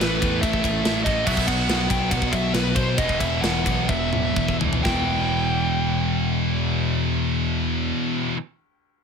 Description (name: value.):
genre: heavy metal.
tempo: 121-143 BPM.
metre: 4/4.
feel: straight.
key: E minor.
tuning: A4 = 440 Hz.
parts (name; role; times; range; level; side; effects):
dark smooth lead guitar; melody; 0.0-7.9 s; B4 to G5; -27 LUFS; left 2 dB; overdrive.
overdriven semi-hollow guitar; riff; 0.0-8.4 s; E2 to B3; -28 LUFS; equal; none.
scooped high-gain guitar; riff; 0.0-8.4 s; E2 to B3; -28 LUFS; left 14 dB; distortion.
scooped high-gain guitar; riff; 0.0-8.4 s; E2 to B3; -27 LUFS; right 16 dB; distortion.
modern bright picked electric bass; bass; 0.0-7.9 s; E1 to B2; -27 LUFS; equal; none.
tight metal drum kit; drums; 0.0-5.0 s; crash cymbal, kick drum, ride cymbal, snare drum, toms; -25 LUFS; equal; none.
room: little or no reverb.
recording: none.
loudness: -20 LUFS.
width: side -6 dB against mid.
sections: 0.0-4.8 A section; 4.8-8.8 B section.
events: slowing down 1.3-4.8; drum fill 3.9-4.8.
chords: 0.0 A5; 1.3 B5; 3.0 E5.